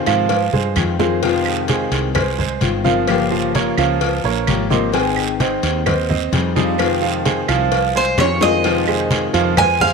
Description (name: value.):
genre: latin, Cuban son and guajira.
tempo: 129 BPM.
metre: 4/4.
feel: straight.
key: F minor.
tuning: A4 = 440 Hz.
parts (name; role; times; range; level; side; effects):
nylon-string guitar; accompaniment; 0.0-9.6 s; C3 to Ab4; -21 LUFS; left 13 dB; none.
bright grand piano; arpeggios; 0.0-9.9 s; F3 to Ab5; -20 LUFS; right 11 dB; tape echo.
woody fretless electric bass; bass; 0.1-9.9 s; G1 to Ab2; -23 LUFS; equal; none.
claves; percussion; 0.1-9.8 s; none; -29 LUFS; right 13 dB; none.
congas; percussion; 0.1-9.9 s; none; -22 LUFS; equal; none.
cowbell and bongos; percussion; 0.1-9.8 s; none; -25 LUFS; left 12 dB; none.
guiro; percussion; 0.1-9.9 s; none; -28 LUFS; right 11 dB; none.
Cuban tres; melody; 8.0-9.9 s; C5 to Ab5; -17 LUFS; right 2 dB; none.
room: moderate plate reverb, RT60 2.3 s.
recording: 1960s-style stereo with parts hard left and right.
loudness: -15 LUFS.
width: side -4 dB against mid.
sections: 0.0-8.6 A section; 8.6-9.9 B section.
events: drum fill 0.5-1.2, 8.2-8.6.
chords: 0.0 Fm7; 3.1 Gm7b5; 4.9 Abmaj7; 6.8 Fm7.